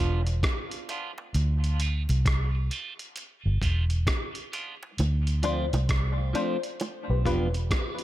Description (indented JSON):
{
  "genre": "dub reggae",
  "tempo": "66 BPM",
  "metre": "4/4",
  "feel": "swing 64% on 16ths",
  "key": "D dorian",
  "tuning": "A4 = 440 Hz",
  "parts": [
    { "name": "clean electric guitar", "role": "accompaniment", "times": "0.0-7.6 s", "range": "F3 to F4", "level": "-35 LUFS", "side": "right 4 dB", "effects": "phaser, high-pass filter, tape echo" },
    { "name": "vintage muted fingered electric bass", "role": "bass", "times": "0.0-7.7 s", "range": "E1 to D2", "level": "-25 LUFS", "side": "equal", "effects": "none" },
    { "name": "dusty soul sampler-style drum kit", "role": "drums", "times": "0.3-8.0 s", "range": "hi-hat, kick drum, rim click", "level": "-30 LUFS", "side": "equal", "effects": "none" },
    { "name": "bongos", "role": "percussion", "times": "0.4-8.0 s", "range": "none", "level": "-39 LUFS", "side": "right 2 dB", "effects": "high-pass filter on perc, tape echo" },
    { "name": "filtered dub chord stab", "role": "stabs", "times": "5.4-7.5 s", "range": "D4 to C5", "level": "-33 LUFS", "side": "left 6 dB", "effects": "chorus, high-pass filter, tape echo" }
  ],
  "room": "little or no reverb",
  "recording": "echo-heavy mix",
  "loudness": "-25 LUFS",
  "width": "side -14 dB against mid",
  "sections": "0.0-8.0 A section",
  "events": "break 0.0-5.0; filter sweep 0.0-5.0",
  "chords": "0.0 Dm69/E; 1.3 Dm7; 3.2 G7 (rootless); 5.0 Dm7; 6.8 G7"
}